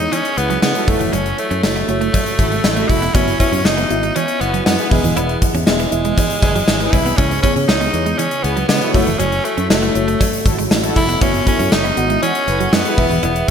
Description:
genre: 1980s-style pop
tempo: 119 BPM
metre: 4/4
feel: straight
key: E major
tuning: A4 = 440 Hz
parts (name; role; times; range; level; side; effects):
- raspy tenor saxophone; melody; 0.0-13.5 s; G#3 to E4; -20 LUFS; equal; none
- FM electric piano with soft pad layer; accompaniment; 0.0-13.5 s; C#3 to F#5; -22 LUFS; left 1 dB; chorus, tremolo
- clean electric guitar; riff; 0.0-13.5 s; E3 to E4; -25 LUFS; right 7 dB; analog chorus
- fretless electric bass; bass; 0.0-13.4 s; D#1 to C#3; -22 LUFS; equal; none
- gated 80s drum kit; drums; 0.0-13.5 s; hi-hat, kick drum, snare drum, tambourine; -17 LUFS; equal; gated reverb
- cowbell; percussion; 0.1-13.3 s; none; -32 LUFS; left 4 dB; none
- analog synth brass; stabs; 0.4-13.1 s; E4 to B4; -26 LUFS; equal; chorus, digital delay
room: moderate lush hall reverb, RT60 2.0 s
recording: bright 1980s-style digital production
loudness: -13 LUFS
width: side -8 dB against mid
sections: 0.0-13.5 A section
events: none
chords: 0.0 C#m7; 0.9 F#m7; 3.1 Bsus4/F#; 4.9 E; 7.2 C#m7; 8.9 F#m7; 11.2 Bsus4/F#; 13.0 E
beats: 0.12 0.63 | 1.13 1.63 2.14 2.64 | 3.15 3.65 4.16 4.66 | 5.16 5.67 6.17 6.68 | 7.18 7.68 8.19 8.69 | 9.20 9.70 10.21 10.71 | 11.21 11.72 12.22 12.73 | 13.23

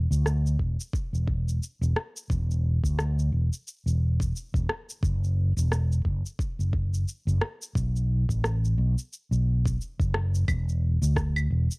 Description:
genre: organic downtempo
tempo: 88 BPM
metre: 4/4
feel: swing 58% on 16ths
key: unclear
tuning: A4 = 439 Hz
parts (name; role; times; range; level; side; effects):
- fretless electric bass; bass; 0.0-11.7 s; E1 to D2; -24 LUFS; equal; tube saturation, sidechain pumping
- electronic shaker, rim click and claves; drums; 0.1-11.8 s; none; -33 LUFS; equal; studio reverb
- electronic kick drum; drums; 0.6-11.3 s; none; -30 LUFS; equal; studio reverb
room: little or no reverb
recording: home recording on cassette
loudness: -24 LUFS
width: side -34 dB against mid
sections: 0.0-10.5 A section; 10.5-11.8 B section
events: none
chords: none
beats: 0.25 0.94 1.62 | 2.30 2.98 3.66 4.34 | 5.03 5.71 6.39 7.07 | 7.75 8.44 9.12 9.80 | 10.48 11.16

